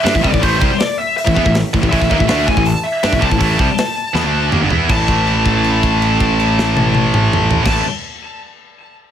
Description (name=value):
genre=heavy metal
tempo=161 BPM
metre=4/4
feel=straight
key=A minor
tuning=A4 = 440 Hz
part: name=high-gain lead guitar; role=melody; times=0.0-7.8 s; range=C5 to A5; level=-20 LUFS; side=left 2 dB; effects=distortion
part: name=heavy high-gain guitar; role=riff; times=0.0-7.8 s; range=G2 to E4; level=-19 LUFS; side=left 9 dB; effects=distortion
part: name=tight distorted guitar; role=riff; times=0.0-7.8 s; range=G2 to E4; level=-19 LUFS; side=right 12 dB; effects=distortion
part: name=fuzz picked electric bass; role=bass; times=0.0-7.8 s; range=G1 to G2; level=-19 LUFS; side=equal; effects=overdrive
part: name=tight metal drum kit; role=drums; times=0.1-7.7 s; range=crash cymbal, hi-hat, kick drum, snare drum, toms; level=-19 LUFS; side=equal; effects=none
room=studio reverb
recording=none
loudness=-12 LUFS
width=side -9 dB against mid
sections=0.0-4.9 A section; 4.9-7.9 B section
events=drum fill 4.1-4.9; held note 4.9-7.7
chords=0.0 Am; 4.9 A5